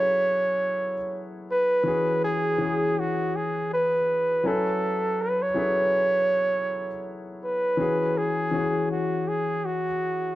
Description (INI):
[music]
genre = soul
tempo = 81 BPM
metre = 4/4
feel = swing 58% on 16ths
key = E major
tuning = A4 = 440 Hz
[part]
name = warm flugelhorn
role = melody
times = 0.0-10.4 s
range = F#4 to C#5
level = -24 LUFS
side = right 1 dB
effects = none
[part]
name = warm grand piano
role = accompaniment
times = 0.0-10.4 s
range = E3 to G#5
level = -29 LUFS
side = left 3 dB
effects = none
[sound]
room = light reverb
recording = dark, warm production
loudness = -22 LUFS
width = side -15 dB against mid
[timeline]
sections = 0.0-10.4 A section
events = none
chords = 0.0 F#m11; 1.9 E69; 4.5 F#m11; 7.8 E69